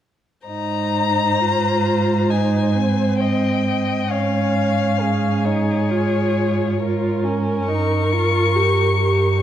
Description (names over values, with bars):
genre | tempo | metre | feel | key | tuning
classical, slow romantic movement for string quartet | 67 BPM | 4/4 | rubato | Ab major | A4 = 440 Hz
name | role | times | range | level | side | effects
rich violin | melody | 0.5-9.4 s | Db5 to Db6 | -23 LUFS | left 8 dB | none
rich violin | second line | 0.5-9.4 s | Ab4 to Eb5 | -26 LUFS | left 2 dB | none
warm viola | accompaniment | 0.5-9.4 s | C4 to G4 | -23 LUFS | right 2 dB | none
warm cello | bass | 0.5-9.4 s | G2 to Ab2 | -20 LUFS | right 2 dB | none
room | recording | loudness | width
wet recital hall reverb, RT60 1.6 s | dark, warm production | -16 LUFS | side -10 dB against mid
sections
0.5-9.4 A section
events
none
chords
0.5 Ab; 4.1 Bbm7/Ab; 7.7 Eb7/G